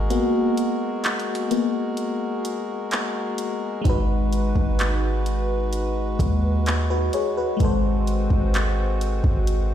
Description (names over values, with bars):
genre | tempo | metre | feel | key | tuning
contemporary R&B | 64 BPM | 4/4 | straight | G# minor | A4 = 440 Hz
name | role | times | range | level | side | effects
FM electric piano with soft pad layer | accompaniment | 0.0-9.7 s | G#3 to C#5 | -25 LUFS | left 2 dB | chorus, phaser
pedal harmonium | sustained chords | 0.0-9.7 s | G#3 to B4 | -29 LUFS | left 1 dB | none
warm 808-style bass | bass | 0.0-9.7 s | G#1 to D#2 | -23 LUFS | equal | none
smooth R&B drum kit | drums | 0.1-9.7 s | handclaps, hi-hat, kick drum | -25 LUFS | equal | none
room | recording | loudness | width
light reverb | played on a big sound system in a bare room, stone room reverb | -20 LUFS | side -10 dB against mid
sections
0.0-3.9 A section; 3.9-9.7 B section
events
FM electric piano solo 0.0-3.9; kick muted 0.1-3.9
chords
0.0 G#m9; 3.9 G#m7; 7.6 G#7b9